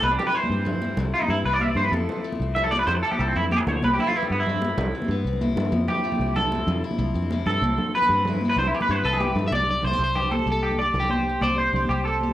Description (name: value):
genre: highlife guitar band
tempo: 126 BPM (dotted quarters)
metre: 12/8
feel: straight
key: C major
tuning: A4 = 440 Hz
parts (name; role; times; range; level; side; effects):
- picked steel-string acoustic guitar; accompaniment; 0.0-12.3 s; F2 to G4; -33 LUFS; left 7 dB; plate reverb
- clean electric guitar; arpeggios; 0.0-12.3 s; G3 to E5; -24 LUFS; right 1 dB; lush chorus, plate reverb, tape echo
- fingered electric bass; bass; 0.0-12.3 s; C2 to G2; -26 LUFS; equal; none
- congas; percussion; 0.0-12.3 s; none; -27 LUFS; right 1 dB; none
- electric guitar at the edge of break-up; melody; 9.0-12.3 s; G4 to E5; -27 LUFS; left 2 dB; cassette tape, plate reverb
room: moderate booth ambience, RT60 0.2 s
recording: home recording on cassette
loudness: -21 LUFS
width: side -13 dB against mid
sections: 0.0-9.5 A section; 9.5-12.3 B section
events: clean electric guitar solo 0.0-9.5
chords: 0.0 C; 1.9 Fmaj7; 3.8 Cmaj7; 5.7 Fmaj7; 7.6 Cmaj7; 9.5 Csus2